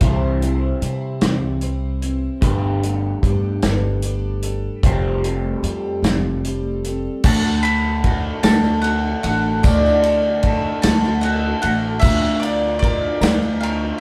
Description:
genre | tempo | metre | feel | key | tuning
folk rock and heartland rock | 50 BPM (dotted quarters) | 6/8 | straight | D mixolydian | A4 = 444 Hz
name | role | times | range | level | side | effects
picked twelve-string acoustic guitar | accompaniment | 0.0-14.0 s | C3 to C5 | -30 LUFS | equal | none
electric guitar through a small old amp | riff | 0.0-14.0 s | C3 to C5 | -29 LUFS | equal | phaser
upright bass | bass | 0.0-13.9 s | F1 to C3 | -23 LUFS | equal | none
natural country drum kit | drums | 0.0-13.8 s | crash cymbal, hi-hat, kick drum, ride cymbal, snare drum | -23 LUFS | equal | none
tambourine | percussion | 7.2-13.5 s | none | -41 LUFS | equal | none
mandolin | melody | 7.3-14.0 s | D5 to B5 | -24 LUFS | equal | none
room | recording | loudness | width
light reverb | band playing live in one room | -19 LUFS | mono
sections
0.0-7.3 A section; 7.3-14.0 B section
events
none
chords
0.0 C; 2.4 Gadd9; 4.9 Fadd9; 7.3 D; 12.0 Bb/D

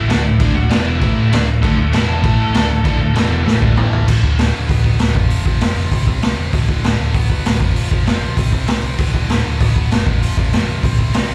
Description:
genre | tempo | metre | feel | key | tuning
punk rock | 195 BPM | 4/4 | straight | unclear | A4 = 441 Hz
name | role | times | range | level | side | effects
bluesy overdriven lead guitar | melody | 0.0-3.7 s | A3 to A5 | -26 LUFS | equal | distortion, slapback echo
crunchy overdriven guitar | riff | 0.0-4.1 s | D2 to D4 | -24 LUFS | equal | none
tight distorted guitar | riff | 0.0-11.3 s | D2 to D4 | -26 LUFS | equal | distortion, slapback echo
overdriven picked electric bass | bass | 0.0-11.3 s | D1 to D2 | -21 LUFS | equal | none
raw garage drum kit | drums | 0.1-11.2 s | crash cymbal, hi-hat, kick drum, snare drum, toms | -18 LUFS | equal | none
room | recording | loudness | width
small room ambience | live gig heard through the venue's PA, club reverb | -16 LUFS | mono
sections
0.0-4.1 A section; 4.1-11.3 B section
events
drum fill 3.5-4.1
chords
0.1 D; 0.7 E5; 1.0 A5; 1.3 D5; 1.9 E5; 2.2 A5; 2.5 D5; 3.1 E5; 3.5 D5; 3.8 A5; 4.1 D5; 4.7 Bm/D; 5.1 F5; 5.9 C; 6.5 D5; 7.1 Bm/D; 7.6 F5; 8.4 C5; 9.0 D5; 9.6 Bm/D; 10.1 F5; 10.8 C5

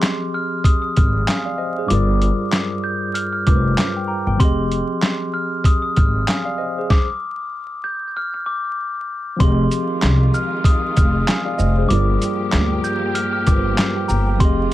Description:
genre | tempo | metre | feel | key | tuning
hip hop, boom-bap hip-hop | 96 BPM | 4/4 | swing 56% on 16ths | F dorian | A4 = 440 Hz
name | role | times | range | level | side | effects
glockenspiel with rubber mallets | melody | 0.0-14.7 s | C6 to G6 | -24 LUFS | left 1 dB | high-pass filter, low-pass filter, tape echo
tine electric piano | accompaniment | 0.0-14.7 s | G2 to Bb5 | -23 LUFS | equal | medium stereo tremolo, high-pass filter, low-pass filter
boom bap sampler-style drum kit | drums | 0.0-14.7 s | handclaps, hi-hat, kick drum, shaker, snare drum | -17 LUFS | equal | none
upright bass | bass | 1.0-14.6 s | F1 to D2 | -19 LUFS | equal | none
warm studio string section | sustained chords | 9.4-14.7 s | Eb3 to G4 | -28 LUFS | left 1 dB | high-pass filter, low-pass filter
room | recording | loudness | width
light reverb | vinyl crackle | -16 LUFS | side -15 dB against mid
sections
0.0-9.4 A section; 9.4-14.7 B section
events
stop 6.9-9.4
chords
0.0 Fm7; 1.9 Gm7; 4.4 Fm7; 6.9 N.C.; 9.4 Fm7; 11.9 Gm7

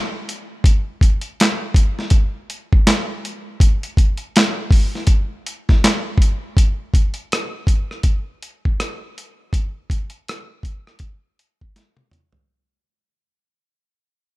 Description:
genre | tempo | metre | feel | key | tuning
R&B | 81 BPM | 4/4 | swing 59% on 16ths | none | none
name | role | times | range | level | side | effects
boom bap sampler-style drum kit | drums | 0.3-12.5 s | handclaps, hi-hat, kick drum, rim click, snare drum, toms | -15 LUFS | equal | none
room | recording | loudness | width
little or no reverb | rough home demo mix | -16 LUFS | side -20 dB against mid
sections
0.0-6.6 A section; 6.6-12.5 B section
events
fade-out 6.6-12.5; drum fill 11.7-12.5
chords
none

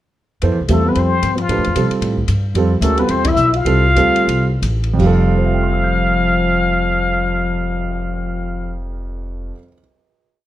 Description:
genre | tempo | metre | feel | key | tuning
modal jazz | 157-226 BPM | 4/4 | swing 58% on 8ths | F major | A4 = 441 Hz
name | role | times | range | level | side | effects
warm concert grand piano | accompaniment | 0.4-9.8 s | F2 to C7 | -20 LUFS | right 5 dB | none
upright bass | bass | 0.4-9.5 s | F1 to B2 | -18 LUFS | equal | none
open jazz drum kit | drums | 0.4-7.9 s | crash cymbal, cymbal swell, hi-hat, kick drum, ride cymbal | -28 LUFS | left 1 dB | none
trumpet with plunger mute | melody | 0.7-8.8 s | F4 to F5 | -19 LUFS | left 1 dB | none
warm trombone | second line | 0.7-8.8 s | F3 to F4 | -21 LUFS | left 5 dB | none
room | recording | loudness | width
light reverb | dark, warm production | -14 LUFS | side -13 dB against mid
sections
0.4-5.0 A section; 5.0-8.0 final chord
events
slowing down 2.5-5.0; band accent 3.2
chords
0.4 Fmaj7

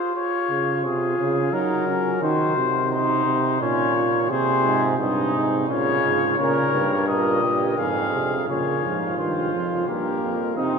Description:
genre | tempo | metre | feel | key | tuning
classical, imitative canzona for brass ensemble | 86 BPM | 3/4 | straight | Bb minor | A4 = 441 Hz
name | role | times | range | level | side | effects
mellow trumpet | melody | 0.0-10.8 s | Ab4 to F5 | -24 LUFS | left 7 dB | none
mellow flugelhorn | second line | 0.0-10.8 s | Db4 to Bb4 | -25 LUFS | right 3 dB | none
mellow trombone | accompaniment | 0.5-10.8 s | Ab2 to C4 | -25 LUFS | right 3 dB | none
bright bass trombone | bass | 4.6-10.8 s | F2 to Db3 | -26 LUFS | right 1 dB | none
room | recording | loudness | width
wet cathedral reverb, RT60 6.2 s | minimal, uncompressed stereo recording | -19 LUFS | side -5 dB against mid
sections
0.0-8.5 A section; 8.5-10.8 B section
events
none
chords
0.2 Dbmaj7; 1.5 Gb; 2.2 Cdim; 3.6 Bbm; 4.3 Abmaj7; 5.7 Db; 6.4 Gdim; 7.8 Fm; 8.5 Bbm; 9.9 Fsus24

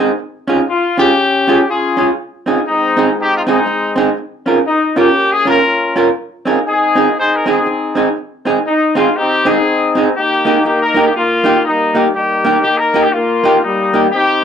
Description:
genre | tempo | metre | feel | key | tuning
ska | 120 BPM | 4/4 | swing 61% on 8ths | unclear | A4 = 439 Hz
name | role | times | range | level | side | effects
clear horn section | melody | 0.0-14.4 s | G3 to C5 | -13 LUFS | left 2 dB | none
vintage hollow-body jazz guitar | accompaniment | 0.0-14.1 s | Bb3 to Bb4 | -14 LUFS | right 2 dB | tape echo
room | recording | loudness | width
moderate club reverb, RT60 0.7 s | nothing above 10.9 kHz | -11 LUFS | side -8 dB against mid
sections
0.0-10.2 A section; 10.2-14.4 B section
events
none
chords
0.2 Db; 2.2 Ab; 4.2 Bbm; 6.2 Ab; 10.2 Eb

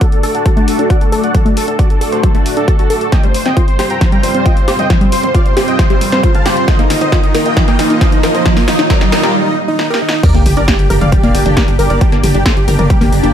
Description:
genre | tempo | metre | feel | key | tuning
uplifting trance | 135 BPM | 4/4 | straight | G minor | A4 = 440 Hz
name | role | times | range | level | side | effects
dense compressed supersaw | melody | 0.0-13.3 s | Eb4 to Bb5 | -17 LUFS | right 1 dB | sidechain pumping, low-pass filter, ping-pong delay
wide unison pluck | arpeggios | 0.0-13.3 s | F3 to Bb4 | -19 LUFS | left 1 dB | cassette tape, sidechain pumping, tape echo
electronic kick drum | drums | 0.0-13.0 s | none | -12 LUFS | equal | none
punchy analog drum machine | drums | 0.0-13.3 s | crash cymbal, hi-hat, snare drum, toms | -19 LUFS | left 1 dB | high-pass filter on hats, high-pass filter on snare, high-pass filter on toms, high-pass filter on cymbals
lush unison pad | sustained chords | 0.1-13.3 s | G3 to Eb5 | -19 LUFS | equal | chorus, phaser, sidechain pumping
riser and sub drop | sound effects | 4.7-12.0 s | none | -19 LUFS | right 1 dB | none
tight sequencer bass | bass | 10.3-13.3 s | F1 to G1 | -15 LUFS | equal | sidechain pumping
room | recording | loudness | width
light reverb | none | -9 LUFS | side -9 dB against mid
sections
0.0-10.2 A section; 10.2-13.3 B section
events
build-up 0.0-10.2; filter sweep on synth pluck 0.0-10.2; drum fill 3.1-9.3, 9.8-10.2; riser 4.7-9.3; break 9.3-10.2; drop 10.2-13.3; impact 10.2-12.0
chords
0.0 D; 3.1 Fsus2; 6.7 Ebsus2; 10.2 Gm

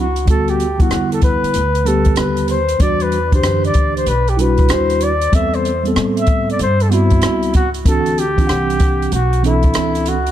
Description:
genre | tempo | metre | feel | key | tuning
hip hop, jazz-hop | 95 BPM | 4/4 | swing 66% on 16ths | E minor | A4 = 439 Hz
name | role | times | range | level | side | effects
breathy flugelhorn | melody | 0.0-10.3 s | E4 to E5 | -18 LUFS | left 2 dB | analog delay
mellow tine electric piano | accompaniment | 0.0-10.2 s | D3 to F#5 | -19 LUFS | right 1 dB | medium stereo tremolo
upright bass | bass | 0.0-10.3 s | B1 to A2 | -20 LUFS | equal | none
open jazz drum kit | drums | 0.2-10.3 s | hi-hat, kick drum, rim click | -17 LUFS | equal | none
room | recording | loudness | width
light reverb, small room ambience | dark, warm production | -13 LUFS | side -11 dB against mid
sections
0.0-10.3 A section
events
none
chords
0.3 Gmaj7/D; 2.8 Em9; 5.3 Am9/E; 7.9 D9

